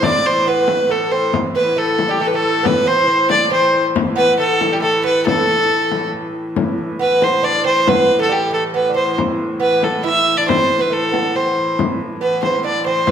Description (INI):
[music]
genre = medieval dance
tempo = 138 BPM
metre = 3/4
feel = straight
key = A minor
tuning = A4 = 442 Hz
[part]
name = rich fiddle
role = melody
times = 0.0-13.1 s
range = G4 to E5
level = -16 LUFS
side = equal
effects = none
[part]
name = breathy alto recorder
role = second line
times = 0.0-6.1 s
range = G4 to D5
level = -23 LUFS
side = left 4 dB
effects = none
[part]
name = lute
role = second line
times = 0.0-13.1 s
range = G3 to E4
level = -23 LUFS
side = right 6 dB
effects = none
[part]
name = dark hurdy-gurdy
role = drone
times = 0.0-13.1 s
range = A2 to E3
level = -25 LUFS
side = equal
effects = none
[part]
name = frame drum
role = percussion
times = 0.0-13.1 s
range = none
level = -22 LUFS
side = left 5 dB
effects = none
[sound]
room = wet recital hall reverb, RT60 1.3 s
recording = none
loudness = -14 LUFS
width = side -8 dB against mid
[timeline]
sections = 0.0-6.6 A section; 6.6-13.1 B section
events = none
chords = none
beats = | 0.03 0.47 0.90 | 1.34 1.77 2.21 | 2.65 3.08 3.52 | 3.96 4.39 4.83 | 5.26 5.70 6.13 | 6.57 7.00 7.44 | 7.87 8.31 8.74 | 9.18 9.61 10.04 | 10.48 10.91 11.35 | 11.78 12.21 12.65 | 13.08